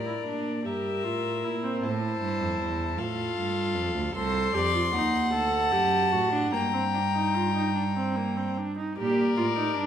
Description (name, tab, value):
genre	classical, baroque-style fugue for string quartet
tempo	50 BPM (dotted quarters)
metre	6/8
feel	uneven beats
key	G minor from 4.1 s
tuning	A4 = 442 Hz
part	warm violin	melody	0.0-9.9 s	Bb4 to C6	-30 LUFS	left 7 dB	none
part	warm violin	second line	0.0-9.9 s	A4 to G5	-32 LUFS	equal	none
part	dark cello	bass	0.0-9.9 s	C2 to Bb2	-30 LUFS	right 3 dB	none
part	warm viola	accompaniment	0.1-9.9 s	Bb3 to A4	-30 LUFS	right 2 dB	none
room	wet recital hall reverb, RT60 1.7 s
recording	minimal, uncompressed stereo recording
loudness	-24 LUFS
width	side -9 dB against mid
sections	0.0-9.0 A section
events	none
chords	0.0 Gm (rootless); 0.7 Edim/G; 1.8 Am; 3.0 F; 4.1 Cm; 5.3 D; 6.5 Gm